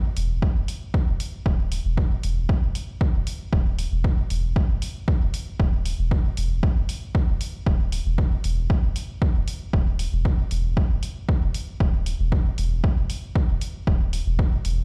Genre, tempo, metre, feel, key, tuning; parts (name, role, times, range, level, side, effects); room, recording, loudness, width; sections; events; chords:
dub techno; 116 BPM; 4/4; straight; A4 = 440 Hz
soft dub sub bass; bass; 0.2-14.8 s; D1 to E1; -27 LUFS; equal; sidechain pumping
electronic hi-hat; drums; 0.2-14.8 s; -41 LUFS; equal; overdrive
electronic kick drum; drums; 0.4-14.5 s; -24 LUFS; equal; overdrive
little or no reverb; played on a big sound system in a bare room, large studio reverb; -24 LUFS; mono
0.0-14.8 A section